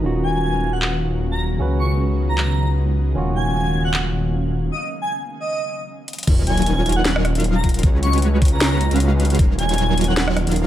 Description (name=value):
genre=future bass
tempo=154 BPM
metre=4/4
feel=swing 54% on 16ths, half-time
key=Eb minor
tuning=A4 = 440 Hz
part: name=barky tine electric piano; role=accompaniment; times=0.0-4.7 s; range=Db3 to Cb5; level=-24 LUFS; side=right 1 dB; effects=phaser, sidechain pumping
part: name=ethereal airy pad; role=sustained chords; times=0.0-10.7 s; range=Db3 to F5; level=-30 LUFS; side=right 1 dB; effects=ensemble chorus, built-in reverb, sidechain pumping
part: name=wide detuned saw bass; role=bass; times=0.0-10.7 s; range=Eb1 to Db2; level=-20 LUFS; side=equal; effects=chorus, sidechain pumping
part: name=airy dreamy lead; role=melody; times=0.2-10.2 s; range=Eb5 to Db6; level=-26 LUFS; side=equal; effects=chorus, phaser, sidechain pumping, tape echo
part: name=trap drum kit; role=drums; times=0.8-10.6 s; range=crash cymbal, handclaps, hi-hat, rim click, snare drum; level=-24 LUFS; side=equal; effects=low-pass filter on hats, low-pass filter on snare, low-pass filter on cymbals
part: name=big bright polysynth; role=riff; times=6.3-10.7 s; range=Gb3 to F5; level=-22 LUFS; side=right 1 dB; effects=chorus, sidechain pumping
part: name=electronic kick drum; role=drums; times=6.3-9.5 s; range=none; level=-16 LUFS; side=equal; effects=none
part: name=sub drop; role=sound effects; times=6.3-7.8 s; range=none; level=-28 LUFS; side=equal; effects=none
room=digital ambience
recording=none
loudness=-17 LUFS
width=side -12 dB against mid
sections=0.0-6.3 A section; 6.3-10.7 B section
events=break 4.7-6.3; drum fill 6.1; drop 6.3-10.7; impact 6.3-7.8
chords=0.0 Ebm9; 1.6 Db7sus4; 3.2 Ebm9; 4.7 N.C.; 6.3 Ebm9; 7.8 Db7sus4; 9.4 Ebm9